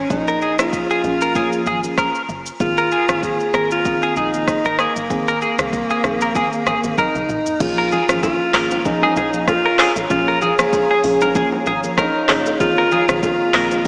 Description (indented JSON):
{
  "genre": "afrobeats",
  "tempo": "96 BPM",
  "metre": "4/4",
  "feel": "swing 55% on 16ths",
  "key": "Bb minor",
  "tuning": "A4 = 439 Hz",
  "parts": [
    { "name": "warm alto saxophone", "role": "melody", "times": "0.0-13.9 s", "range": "Bb3 to Ab4", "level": "-22 LUFS", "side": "equal", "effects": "tape echo" },
    { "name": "deep log drum bass", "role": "bass", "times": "0.0-13.9 s", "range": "Gb1 to Db2", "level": "-34 LUFS", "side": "equal", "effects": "none" },
    { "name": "FM electric piano with soft pad layer", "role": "accompaniment", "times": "0.1-13.9 s", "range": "Eb3 to Ab4", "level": "-27 LUFS", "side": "equal", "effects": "chorus, phaser" },
    { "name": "afro-pop drum kit", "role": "drums", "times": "0.1-13.9 s", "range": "crash cymbal, handclaps, hi-hat, kick drum, rim click, shaker, toms", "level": "-25 LUFS", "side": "equal", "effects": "none" },
    { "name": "direct-recorded clean electric guitar", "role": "riff", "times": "0.3-13.7 s", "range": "Ab4 to Bb4", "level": "-24 LUFS", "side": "equal", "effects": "analog chorus, tape echo" },
    { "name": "granular cloud pad", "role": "sustained chords", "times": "8.8-13.9 s", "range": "Ab4 to Bb5", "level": "-29 LUFS", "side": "equal", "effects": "built-in reverb" },
    { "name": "congas and bongos", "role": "percussion", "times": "7.6-13.8 s", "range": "none", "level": "-31 LUFS", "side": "equal", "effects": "none" }
  ],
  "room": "wet lush hall reverb, RT60 2.6 s",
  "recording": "dreamy mix soaked in reverb, small speaker sound",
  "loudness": "-18 LUFS",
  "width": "mono",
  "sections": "0.0-7.6 A section; 7.6-13.9 B section",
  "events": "drum fill 7.0-7.6",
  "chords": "0.0 Bbm7; 2.6 Abadd9; 7.6 Bbm7; 12.6 Abadd9"
}